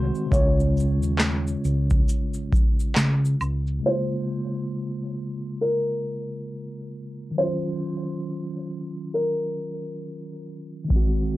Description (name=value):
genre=lo-fi hip hop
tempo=68 BPM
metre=4/4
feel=swing 58% on 16ths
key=Db major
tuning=A4 = 440 Hz
part: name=felt-muted upright piano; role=melody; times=0.0-10.4 s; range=Bb4 to Db5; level=-27 LUFS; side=left 1 dB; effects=none
part: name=mellow tine electric piano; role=accompaniment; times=0.0-11.4 s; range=Db3 to Gb4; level=-29 LUFS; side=equal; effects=medium stereo tremolo
part: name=hollow-body short-scale fingered electric bass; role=bass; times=0.0-3.8 s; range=Db2 to Db3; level=-23 LUFS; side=equal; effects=none
part: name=booming analog drum machine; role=drums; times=0.1-3.8, 10.9-11.2 s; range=handclaps, hi-hat, kick drum, shaker, snare drum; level=-22 LUFS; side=equal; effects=overdrive
part: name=tube shaker and woodblock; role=percussion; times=0.3-3.6 s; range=none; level=-34 LUFS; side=right 2 dB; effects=none
room=little or no reverb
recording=dry, gritty hardware recording, transformer saturation, cassette tape, low-pass filter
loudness=-22 LUFS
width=side -17 dB against mid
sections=0.0-3.8 A section; 3.8-11.4 B section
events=filter sweep 3.8-11.4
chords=0.3 Db; 3.8 Db6; 7.4 Ebm9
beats=| 0.31 1.20 2.08 2.96 | 3.84 4.73 5.61 6.49 | 7.37 8.26 9.14 10.02 | 10.90